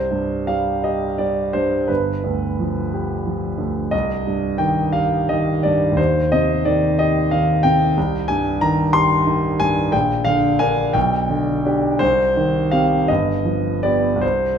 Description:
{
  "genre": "classical, romantic character piece for solo piano",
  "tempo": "51-62 BPM (dotted quarters)",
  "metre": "6/8",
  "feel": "rubato",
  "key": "C minor",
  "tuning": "A4 = 440 Hz",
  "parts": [
    { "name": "clear concert grand piano", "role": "solo", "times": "0.0-14.6 s", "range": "G1 to C6", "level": "-16 LUFS", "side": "equal", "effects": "none" }
  ],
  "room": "moderate recital hall reverb, RT60 1.5 s",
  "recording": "minimal, uncompressed stereo recording",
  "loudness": "-16 LUFS",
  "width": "side -7 dB against mid",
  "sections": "0.0-14.6 A section",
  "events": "none",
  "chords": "0.0 C5; 1.9 G7; 3.9 Cm; 6.0 Cm/Eb; 8.0 Cm; 9.9 Bb; 11.0 G/B; 12.0 Cm; 13.1 G7",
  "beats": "0.85 | 1.89 2.93 | 3.93 4.95 | 5.98 6.98 | 7.96 8.94 | 9.93 10.95 | 12.01 13.09 | 14.22"
}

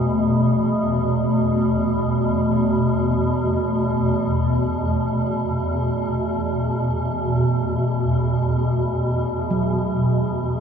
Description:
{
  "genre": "ambient",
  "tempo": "free time",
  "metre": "none",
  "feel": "none",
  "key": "unclear",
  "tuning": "A4 = 441 Hz",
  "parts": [
    { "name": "bronze singing bowl", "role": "arpeggios", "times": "0.0-10.6 s", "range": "F#3 to A3", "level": "-25 LUFS", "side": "equal", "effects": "tape echo, shimmer reverb" },
    { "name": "swarming drone", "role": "drone", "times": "0.0-10.6 s", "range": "E2 to B2", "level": "-20 LUFS", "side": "equal", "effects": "built-in reverb" },
    { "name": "bronze singing bowl", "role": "texture", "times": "0.0-10.6 s", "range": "G3 to B4", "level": "-42 LUFS", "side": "right 3 dB", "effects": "none" }
  ],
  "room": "wet cathedral reverb, RT60 5.0 s",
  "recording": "in a vast, echoing space",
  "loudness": "-18 LUFS",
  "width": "side -7 dB against mid",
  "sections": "0.0-10.6 A section",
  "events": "none",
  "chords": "0.0 Em",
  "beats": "free time"
}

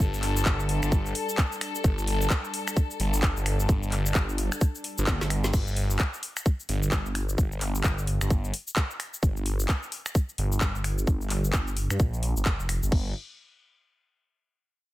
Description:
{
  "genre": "bass house",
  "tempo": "130 BPM",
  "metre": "4/4",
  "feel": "swing 60% on 16ths",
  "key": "unclear",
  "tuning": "A4 = 440 Hz",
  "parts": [
    { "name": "warm chamber string section", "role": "sustained chords", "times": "0.0-5.5 s", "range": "G3 to A4", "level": "-34 LUFS", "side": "left 3 dB", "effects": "sidechain pumping, low-pass filter" },
    { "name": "phased detuned saw bass", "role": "bass", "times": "0.0-13.1 s", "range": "F1 to G2", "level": "-27 LUFS", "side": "equal", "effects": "phaser, tube saturation, sidechain pumping" },
    { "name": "electronic kick drum", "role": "drums", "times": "0.0-13.0 s", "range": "none", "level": "-23 LUFS", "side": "equal", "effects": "none" },
    { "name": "garage drum kit", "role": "drums", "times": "0.0-13.0 s", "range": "crash cymbal, finger snaps, handclaps, hi-hat, shaker, snare drum, toms", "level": "-31 LUFS", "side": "left 1 dB", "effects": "none" }
  ],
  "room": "digital ambience",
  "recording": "none",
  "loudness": "-24 LUFS",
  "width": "side -16 dB against mid",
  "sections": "0.0-5.5 A section; 5.5-12.9 B section; 12.9-14.8 C section",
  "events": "drop 0.0-5.5; drum fill 5.1-5.5; filter sweep on detuned saw bass 5.5-12.9",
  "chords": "0.0 G5; 5.5 N.C.",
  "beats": "| 0.00 0.46 0.92 1.38 | 1.84 2.30 2.77 3.23 | 3.69 4.15 4.61 5.07 | 5.54 6.00 6.46 6.92 | 7.38 7.84 8.30 8.77 | 9.23 9.69 10.15 10.61 | 11.07 11.54 12.00 12.46 | 12.92"
}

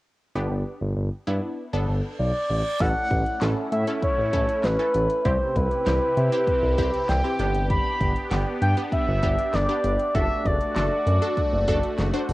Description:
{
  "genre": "synth-pop",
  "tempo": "98 BPM",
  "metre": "4/4",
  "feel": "straight",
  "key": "G major",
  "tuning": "A4 = 440 Hz",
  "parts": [
    { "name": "wide unison pluck", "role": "accompaniment", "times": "0.4-12.3 s", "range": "B3 to C5", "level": "-31 LUFS", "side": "equal", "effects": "phaser, cassette tape" },
    { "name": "smooth synth bass", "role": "bass", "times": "0.4-12.3 s", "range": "F#1 to C3", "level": "-24 LUFS", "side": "equal", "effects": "none" },
    { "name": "reverse cymbal", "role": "sound effects", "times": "1.9-2.8 s", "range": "none", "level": "-40 LUFS", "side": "right 4 dB", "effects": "none" },
    { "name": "expressive synth lead", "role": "melody", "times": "2.2-12.3 s", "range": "B4 to B5", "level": "-24 LUFS", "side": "equal", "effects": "chorus, cassette tape, analog delay" },
    { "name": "sweeping resonant pad", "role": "sustained chords", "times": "2.8-12.3 s", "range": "C3 to G4", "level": "-32 LUFS", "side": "equal", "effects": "chorus, cassette tape" },
    { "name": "pop drum kit", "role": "drums", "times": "2.8-12.3 s", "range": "crash cymbal, handclaps, hi-hat, kick drum, snare drum", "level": "-28 LUFS", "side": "equal", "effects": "cassette tape" }
  ],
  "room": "light reverb, digital ambience",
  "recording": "home recording on cassette",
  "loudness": "-21 LUFS",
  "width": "side -18 dB against mid",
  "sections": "0.4-2.8 A section; 2.8-12.3 B section",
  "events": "reverse cymbal 1.9-2.8",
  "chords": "0.4 G; 2.8 A; 5.3 C; 7.4 G; 10.1 D/F#",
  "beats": "| 0.35 0.97 1.58 2.19 | 2.80 3.42 4.03 4.64 | 5.25 5.86 6.48 7.09 | 7.70 8.31 8.93 9.54 | 10.15 10.76 11.37 11.99"
}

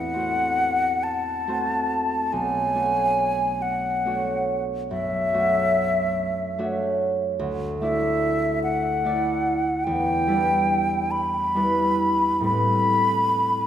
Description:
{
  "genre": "classical, impressionist duo for flute and harp",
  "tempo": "42-50 BPM (dotted quarters)",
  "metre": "12/8",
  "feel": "rubato",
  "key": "A minor",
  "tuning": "A4 = 440 Hz",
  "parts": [
    { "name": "mellow hollow silver concert flute", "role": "melody", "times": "0.0-13.7 s", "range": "E5 to B5", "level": "-22 LUFS", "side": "left 1 dB", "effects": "none" },
    { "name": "concert harp", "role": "accompaniment", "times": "0.0-13.7 s", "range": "B1 to D5", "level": "-25 LUFS", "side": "right 1 dB", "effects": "none" }
  ],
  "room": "wet scoring stage reverb, RT60 1.8 s",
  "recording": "none",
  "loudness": "-20 LUFS",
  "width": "side -10 dB against mid",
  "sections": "0.0-13.7 A section",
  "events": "none",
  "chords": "0.0 Am6; 2.3 Bm11; 7.4 Dadd9; 9.8 Em7; 12.5 Am9",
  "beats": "1.04 | 2.33 3.63 4.91 6.17 | 7.40 8.63 9.85 11.11 | 12.46"
}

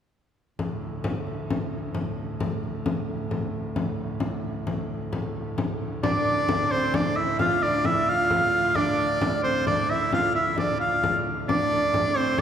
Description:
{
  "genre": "medieval dance",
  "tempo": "88 BPM (dotted quarters)",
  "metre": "6/8",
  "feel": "straight",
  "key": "D minor",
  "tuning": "A4 = 440 Hz",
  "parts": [
    { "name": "pipe organ, foundations", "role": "drone", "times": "0.6-12.4 s", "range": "D2 to A2", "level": "-33 LUFS", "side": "right 2 dB", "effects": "none" },
    { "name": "frame drum", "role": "percussion", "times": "0.6-12.4 s", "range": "none", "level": "-29 LUFS", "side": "left 3 dB", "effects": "none" },
    { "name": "bright shawm", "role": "melody", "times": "6.0-12.4 s", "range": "C5 to F5", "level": "-23 LUFS", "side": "equal", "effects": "none" },
    { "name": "warm alto saxophone", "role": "second line", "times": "6.0-12.4 s", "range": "C4 to F4", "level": "-27 LUFS", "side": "right 3 dB", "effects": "none" }
  ],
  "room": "wet church reverb, RT60 3.5 s",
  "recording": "band playing live in one room",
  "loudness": "-23 LUFS",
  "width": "side -8 dB against mid",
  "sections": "0.6-6.0 A section; 6.0-12.4 B section",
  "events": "none",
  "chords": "none",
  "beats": "| 0.58 1.26 | 1.95 2.63 | 3.31 3.99 | 4.67 5.36 | 6.04 6.72 | 7.40 8.08 | 8.76 9.44 | 10.12 10.80 | 11.48 12.17"
}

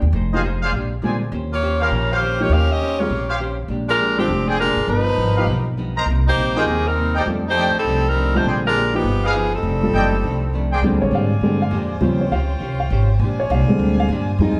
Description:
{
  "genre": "jazz",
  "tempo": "202 BPM",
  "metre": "4/4",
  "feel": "swing 63% on 8ths",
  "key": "Bb mixolydian",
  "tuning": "A4 = 440 Hz",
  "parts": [
    { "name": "hollow-body jazz guitar", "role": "accompaniment", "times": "0.0-14.6 s", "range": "F2 to C5", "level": "-30 LUFS", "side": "equal", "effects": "none" },
    { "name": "upright bass", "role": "bass", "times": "0.0-14.6 s", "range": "F1 to Bb2", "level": "-23 LUFS", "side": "equal", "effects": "none" },
    { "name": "warm concert grand piano", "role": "accompaniment", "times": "0.3-14.6 s", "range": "Db3 to F5", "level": "-24 LUFS", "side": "equal", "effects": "none" },
    { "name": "mellow trumpet section", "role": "stabs", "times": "0.3-10.8 s", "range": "Bb3 to A#5", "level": "-27 LUFS", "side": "equal", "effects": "none" },
    { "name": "bright saxophone section", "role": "melody", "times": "1.5-10.7 s", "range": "Eb3 to F5", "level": "-22 LUFS", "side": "equal", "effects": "none" },
    { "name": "warm saxophone section", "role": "sustained chords", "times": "10.8-14.6 s", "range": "F4 to Ab5", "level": "-34 LUFS", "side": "equal", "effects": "none" }
  ],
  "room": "moderate large studio reverb, RT60 1.2 s",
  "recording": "band playing live in one room",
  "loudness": "-19 LUFS",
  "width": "mono",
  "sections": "0.0-10.8 A section; 10.8-14.6 B section",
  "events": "grand piano solo 10.8-14.6",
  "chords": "0.0 Bb13; 1.3 Eb13; 3.7 Bb13; 4.9 G7alt; 6.1 Cm7; 7.3 F13; 8.4 Bb13; 9.0 Gaug7; 9.6 F13; 10.8 Bb13; 12.0 Eb13; 13.2 Bb13",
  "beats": "| 0.14 0.43 0.73 1.02 | 1.32 1.62 1.91 2.21 | 2.51 2.80 3.10 3.40 | 3.69 3.99 4.29 4.58 | 4.88 5.18 5.48 5.77 | 6.07 6.37 6.66 6.96 | 7.26 7.56 7.85 8.15 | 8.45 8.74 9.04 9.34 | 9.64 9.93 10.23 10.53 | 10.83 11.12 11.42 11.72 | 12.02 12.31 12.61 12.91 | 13.21 13.51 13.80 14.10 | 14.40"
}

